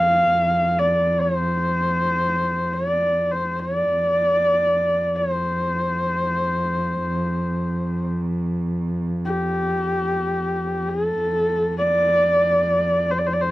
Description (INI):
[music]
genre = mongolian traditional, Mongolian folk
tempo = free time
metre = none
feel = none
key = F gong mode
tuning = A4 = 436 Hz
[part]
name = dark horsehead fiddle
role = melody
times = 0.0-13.5 s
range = G4 to F5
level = -20 LUFS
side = equal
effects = none
[part]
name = muted cello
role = drone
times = 0.0-13.5 s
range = F2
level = -25 LUFS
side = right 1 dB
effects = none
[sound]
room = light reverb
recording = dry, close 1970s-style studio recording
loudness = -19 LUFS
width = side -17 dB against mid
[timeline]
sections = 0.0-13.5 A section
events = slowing down 11.2-13.5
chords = none